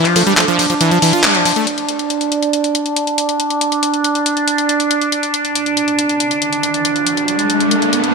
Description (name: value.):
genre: psychedelic trance.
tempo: 139 BPM.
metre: 4/4.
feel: straight.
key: unclear.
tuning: A4 = 440 Hz.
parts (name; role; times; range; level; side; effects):
overtone-sweeping drone; sustained chords; 0.0-8.1 s; D4; -16 LUFS; right 3 dB; chorus, built-in reverb.
liquid acid bass; riff; 0.0-1.7 s; E3 to F4; -15 LUFS; moving between left 6 dB and right 1 dB; chorus, auto-pan, dub echo.
garage drum kit; drums; 0.1-8.1 s; handclaps, hi-hat, ride cymbal; -17 LUFS; left 3 dB; none.
vowel-sweep wobble bass; second line; 0.2-0.5 s; A3; -25 LUFS; right 2 dB; lush chorus, high-pass filter, tape echo.
riser; sound effects; 6.2-8.1 s; none; -20 LUFS; left 1 dB; none.
room: wet digital room reverb, RT60 1.1 s.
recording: none.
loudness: -13 LUFS.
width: side -4 dB against mid.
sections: 0.0-1.7 A section; 1.7-8.1 B section.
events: drop 0.0-1.7; band accent 1.2; riser 6.2-8.1.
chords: 0.0 F5; 1.7 N.C..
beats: 0.38 0.81 1.24 | 1.67 2.10 2.53 2.96 | 3.40 3.83 4.26 4.69 | 5.12 5.55 5.99 6.42 | 6.85 7.28 7.71.